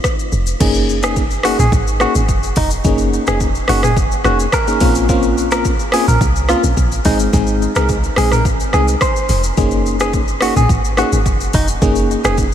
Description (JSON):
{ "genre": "afrobeats", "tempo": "107 BPM", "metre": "4/4", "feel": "straight", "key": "unclear", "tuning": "A4 = 439 Hz", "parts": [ { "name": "afro-pop drum kit", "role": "drums", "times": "0.0-12.5 s", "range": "crash cymbal, hi-hat, kick drum, rim click, shaker, toms", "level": "-17 LUFS", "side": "equal", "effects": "overdrive" }, { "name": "deep log drum bass", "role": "bass", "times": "0.3-12.5 s", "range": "F1 to C2", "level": "-18 LUFS", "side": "equal", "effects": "none" }, { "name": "FM electric piano with auto-pan", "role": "accompaniment", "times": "0.6-12.4 s", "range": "Ab3 to Ab4", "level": "-19 LUFS", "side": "left 2 dB", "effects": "none" }, { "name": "direct-recorded clean electric guitar", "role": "melody", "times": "1.0-12.4 s", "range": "Eb4 to C5", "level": "-19 LUFS", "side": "right 1 dB", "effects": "wide subtle chorus, ping-pong delay" } ], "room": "light reverb, digital ambience", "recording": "none", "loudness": "-12 LUFS", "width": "side -10 dB against mid", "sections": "0.6-12.5 A section", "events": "none", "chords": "0.0 N.C.; 0.6 Gb6; 4.8 Bbmadd9; 7.1 Ab; 9.6 Gb6" }